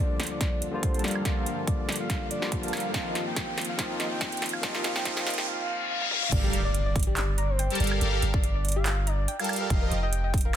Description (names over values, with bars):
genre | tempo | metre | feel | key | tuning
future bass | 142 BPM | 4/4 | swing 54% on 16ths, half-time | unclear | A4 = 440 Hz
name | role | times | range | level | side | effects
soft octave-layered synth lead | melody | 0.0-10.6 s | C5 to G5 | -36 LUFS | equal | chorus, sidechain pumping, tape echo
barky tine electric piano | accompaniment | 0.0-6.3 s | D3 to F4 | -34 LUFS | left 2 dB | overdrive, sidechain pumping, tape echo
shimmering ambient pad | sustained chords | 0.0-5.5 s | F2 to A4 | -44 LUFS | equal | none
riser, reverse cymbal and impact | sound effects | 1.6-8.0 s | none | -34 LUFS | left 2 dB | none
big-room dance drum kit | drums | 0.2-10.5 s | crash cymbal, handclaps, hi-hat, snare drum, toms, woodblock | -32 LUFS | right 2 dB | high-pass filter on hats, high-pass filter on snare, high-pass filter on perc, high-pass filter on toms, high-pass filter on cymbals
electronic kick drum | drums | 0.4-10.4 s | none | -28 LUFS | equal | none
soft supersaw | riff | 0.9-9.9 s | F3 to A5 | -33 LUFS | equal | phaser, sidechain pumping, low-pass filter
long sustained 808-style bass | bass | 6.3-10.6 s | F1 to G1 | -27 LUFS | equal | sidechain pumping
soft round pluck | arpeggios | 6.4-10.5 s | G4 to Bb5 | -37 LUFS | left 4 dB | wide subtle chorus, sidechain pumping, tape echo
room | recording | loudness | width
light reverb | dense, heavily limited modern master, high-pass filter | -25 LUFS | side -10 dB against mid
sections
0.0-6.3 A section; 6.3-10.6 B section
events
build-up 0.0-6.3; drum fill 0.0-5.5, 6.0-6.3; filter sweep on supersaw synth 0.0-6.3; filter sweep 0.0-6.3; riser 1.6-5.5; reverse cymbal 5.5-6.3; drop 6.3-10.6; impact 6.3-8.0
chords
0.0 Gm7; 2.9 F7sus4; 6.3 Gm7; 9.7 F7sus4